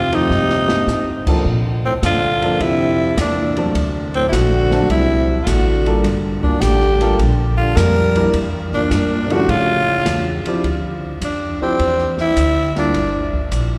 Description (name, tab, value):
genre	jazz, small-group swing and bop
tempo	104 BPM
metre	4/4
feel	swing 68% on 8ths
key	D minor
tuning	A4 = 439 Hz
part	growling tenor saxophone	melody	0.0-13.3 s	C4 to Bb4	-21 LUFS	equal	none
part	breathy trombone	second line	0.0-10.5 s	A2 to G3	-26 LUFS	equal	none
part	upright bass	bass	0.0-13.8 s	G1 to Bb2	-22 LUFS	equal	none
part	warm concert grand piano	accompaniment	0.1-12.9 s	F3 to Bb4	-26 LUFS	equal	none
part	open jazz drum kit	drums	0.1-13.7 s	crash cymbal, hi-hat, kick drum, ride cymbal, snare drum	-28 LUFS	equal	none
room	wet church reverb, RT60 3.7 s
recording	recorded in a church or concert hall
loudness	-17 LUFS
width	mono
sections	0.0-10.6 A section; 10.6-13.8 B section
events	drum fill 0.3-0.9; tenor saxophone solo 10.6-13.8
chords	0.0 F9; 1.5 Bbmaj9; 3.8 D7; 6.0 Gm9; 8.3 Em7b5; 9.5 A7b13; 10.6 Dm11; 12.9 Gm